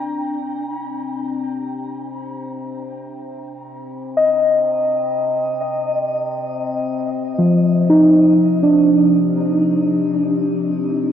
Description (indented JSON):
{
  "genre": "ambient",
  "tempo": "free time",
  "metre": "none",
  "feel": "none",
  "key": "C minor",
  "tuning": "A4 = 441 Hz",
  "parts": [
    { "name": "muted felt-like synth keys", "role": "arpeggios", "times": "0.0-11.1 s", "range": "F3 to G5", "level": "-16 LUFS", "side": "equal", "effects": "chorus, diffuse ambient delay, shimmer reverb" },
    { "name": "overtone-sweeping drone", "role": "drone", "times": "0.0-11.1 s", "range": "C3 to C4", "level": "-27 LUFS", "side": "left 4 dB", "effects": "chorus, built-in reverb" }
  ],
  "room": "wet cathedral reverb, RT60 6.0 s",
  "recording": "worn, warbling old tape, cassette tape, warbly pitch drift",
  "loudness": "-15 LUFS",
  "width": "side -9 dB against mid",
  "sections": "0.0-11.1 A section",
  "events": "fade-in on synth drone 0.0-11.1",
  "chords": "0.0 Cm7"
}